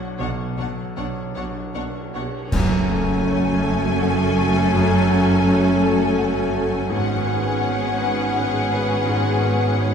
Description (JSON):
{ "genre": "cinematic, emotional film score for orchestra", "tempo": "55 BPM (dotted quarters)", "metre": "6/8", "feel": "rubato", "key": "F# minor", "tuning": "A4 = 440 Hz", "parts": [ { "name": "bright concert grand piano", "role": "accompaniment", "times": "0.0-9.9 s", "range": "B1 to F#5", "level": "-26 LUFS", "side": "left 1 dB", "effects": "none" }, { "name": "concert harp", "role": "arpeggios", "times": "0.0-9.9 s", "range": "F#2 to C#5", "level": "-28 LUFS", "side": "left 3 dB", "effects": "none" }, { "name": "rich symphonic violin section", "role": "melody", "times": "0.2-9.9 s", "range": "F#5 to G#5", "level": "-29 LUFS", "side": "left 3 dB", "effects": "none" }, { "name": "warm symphonic violin section", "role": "second line", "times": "0.2-9.9 s", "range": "G#4 to C#5", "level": "-29 LUFS", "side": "left 3 dB", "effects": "none" }, { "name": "rich symphonic viola section", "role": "accompaniment", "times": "0.2-9.9 s", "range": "C#4 to D4", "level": "-29 LUFS", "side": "right 2 dB", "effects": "none" }, { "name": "rich symphonic cello section", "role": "bass", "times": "0.2-9.9 s", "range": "F#2 to B2", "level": "-24 LUFS", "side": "right 2 dB", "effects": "none" }, { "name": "rich symphonic double bass section", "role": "bass", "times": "0.2-9.9 s", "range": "F#1 to B1", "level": "-26 LUFS", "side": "right 3 dB", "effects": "none" }, { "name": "cymbal swell, clash cymbals and concert bass drum", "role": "percussion", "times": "0.2-4.0 s", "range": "none", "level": "-29 LUFS", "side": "equal", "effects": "none" }, { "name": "clear clarinet", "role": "second line", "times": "2.5-9.9 s", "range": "A3 to C#4", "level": "-32 LUFS", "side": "equal", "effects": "none" }, { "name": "large flute ensemble", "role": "second line", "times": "2.5-9.9 s", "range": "F#5 to G#5", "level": "-30 LUFS", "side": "left 3 dB", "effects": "none" }, { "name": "mellow French horn section", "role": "sustained chords", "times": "2.5-9.9 s", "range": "A3 to F#4", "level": "-28 LUFS", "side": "left 1 dB", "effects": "none" }, { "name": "timpani", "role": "percussion", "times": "2.5-3.6 s", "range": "F#2", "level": "-30 LUFS", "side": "right 1 dB", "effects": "none" } ], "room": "wet scoring stage reverb, RT60 1.6 s", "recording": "heard from further back in the room", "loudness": "-18 LUFS", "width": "side -7 dB against mid", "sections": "0.0-2.5 A section; 2.5-9.9 B section", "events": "band accent 2.5-3.3", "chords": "0.0 Bmadd9; 2.5 F#madd9; 6.9 C#7sus4/G#" }